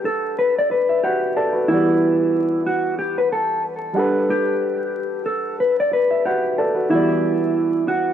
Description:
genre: hip hop, boom-bap hip-hop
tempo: 92 BPM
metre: 4/4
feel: swing 58% on 16ths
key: E minor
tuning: A4 = 441 Hz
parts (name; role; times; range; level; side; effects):
- dark concert grand piano; accompaniment; 0.0-8.1 s; E3 to A5; -21 LUFS; right 1 dB; high-pass filter, low-pass filter
- mellow electric guitar; melody; 0.1-8.1 s; E4 to D5; -20 LUFS; left 1 dB; warbly pitch drift, high-pass filter, low-pass filter, digital delay
room: light reverb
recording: dark, warm production, vinyl crackle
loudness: -17 LUFS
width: side -9 dB against mid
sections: 0.0-6.9 A section; 6.9-8.1 A section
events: none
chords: 0.0 Gmaj9; 1.7 Em9; 4.0 Gmaj9; 6.9 Em9

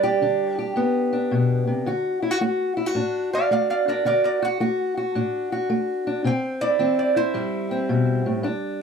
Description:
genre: acoustic country blues, solo or duo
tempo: 109 BPM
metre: 4/4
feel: swing 67% on 8ths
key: unclear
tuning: A4 = 439 Hz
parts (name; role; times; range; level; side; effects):
- lap resonator guitar; melody; 0.0-8.2 s; Bb4 to G5; -21 LUFS; right 4 dB; none
- fingerpicked steel-string acoustic guitar; accompaniment; 0.0-8.8 s; G2 to G4; -22 LUFS; left 2 dB; none
room: wet booth ambience, RT60 0.3 s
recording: none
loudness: -20 LUFS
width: side -6 dB against mid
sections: 0.0-8.8 A section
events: resonator guitar played with a steel bar solo 0.0-8.8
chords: 0.0 G; 1.9 D; 6.3 C

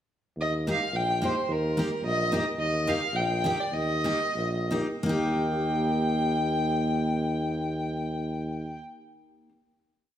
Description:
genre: alpine folk, alpine dance band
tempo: 80-110 BPM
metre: 2/4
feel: swing 54% on 8ths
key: Eb major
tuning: A4 = 442 Hz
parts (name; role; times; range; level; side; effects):
- dark fiddle; melody; 0.4-8.8 s; Bb4 to G5; -29 LUFS; equal; none
- warm tuba; bass; 0.4-8.8 s; Bb1 to Eb2; -30 LUFS; equal; none
- picked steel-string acoustic guitar; accompaniment; 0.7-9.5 s; Bb3 to G4; -31 LUFS; equal; none
room: moderate recital hall reverb, RT60 1.5 s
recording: none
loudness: -25 LUFS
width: side -10 dB against mid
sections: 0.4-5.1 A section; 5.1-8.0 final chord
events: slowing down 2.6-5.1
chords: 0.4 Eb

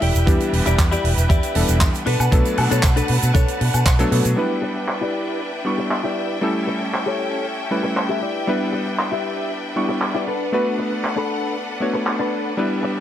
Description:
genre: nu-disco, nu disco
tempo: 117 BPM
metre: 4/4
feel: straight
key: E dorian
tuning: A4 = 440 Hz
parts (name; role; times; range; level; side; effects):
- bright studio string section; sustained chords; 0.0-13.0 s; C#4 to A5; -27 LUFS; equal; sidechain pumping
- direct-recorded clean electric guitar; riff; 0.0-13.0 s; D4 to G5; -26 LUFS; left 3 dB; wide subtle chorus, low-pass filter, tape echo
- fingered electric bass with an envelope filter; bass; 0.0-4.3 s; E1 to B2; -19 LUFS; equal; none
- tight funk drum kit; drums; 0.0-12.2 s; handclaps, hi-hat, woodblock; -25 LUFS; right 1 dB; low-pass filter on hats, low-pass filter on snare, low-pass filter on perc, low-pass filter on room
- egg shaker; percussion; 0.2-4.4 s; none; -34 LUFS; right 3 dB; none
- warm electric grand piano; accompaniment; 0.3-13.0 s; E3 to C#6; -23 LUFS; equal; tape echo
- electronic kick drum; drums; 0.3-4.0 s; none; -18 LUFS; equal; none
room: light reverb, small room ambience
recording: none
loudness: -18 LUFS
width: side -11 dB against mid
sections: 0.0-4.4 A section; 4.4-13.0 B section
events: clean electric guitar fill 0.0; filter sweep on clean electric guitar 4.4-13.0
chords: 0.0 Em7; 2.1 Bm7; 4.4 Em7; 6.4 A7; 8.2 Em7; 10.3 Bm7

